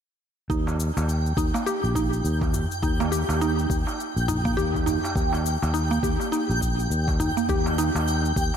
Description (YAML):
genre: organic downtempo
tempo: 103 BPM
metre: 4/4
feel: swing 59% on 16ths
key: Eb major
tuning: A4 = 440 Hz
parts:
  - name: mallet-like synth pluck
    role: arpeggios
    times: 0.5-8.4 s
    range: Bb3 to G4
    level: -27 LUFS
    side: right 1 dB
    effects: chorus, diffuse ambient delay
  - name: sustaining fretless electric bass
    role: bass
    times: 0.5-8.5 s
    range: Bb1 to Eb2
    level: -25 LUFS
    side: equal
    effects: none
  - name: cabasa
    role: drums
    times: 0.5-8.6 s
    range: none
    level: -38 LUFS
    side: left 8 dB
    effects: overdrive
  - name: electronic kick drum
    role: drums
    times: 0.5-8.5 s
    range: none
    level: -28 LUFS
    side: equal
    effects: overdrive
  - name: twinkling granular texture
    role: texture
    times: 1.0-8.6 s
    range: G5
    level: -31 LUFS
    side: equal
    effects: built-in reverb, ensemble chorus
  - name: darbuka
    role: percussion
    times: 0.7-8.6 s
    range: none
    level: -34 LUFS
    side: right 1 dB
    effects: none
room: moderate lush hall reverb, RT60 2.2 s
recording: dreamy mix soaked in reverb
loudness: -22 LUFS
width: side -8 dB against mid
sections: 0.5-8.6 A section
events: none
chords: 0.5 Eb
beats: | 0.50 1.08 1.67 2.25 | 2.83 3.41 4.00 4.58 | 5.16 5.74 6.33 6.91 | 7.49 8.07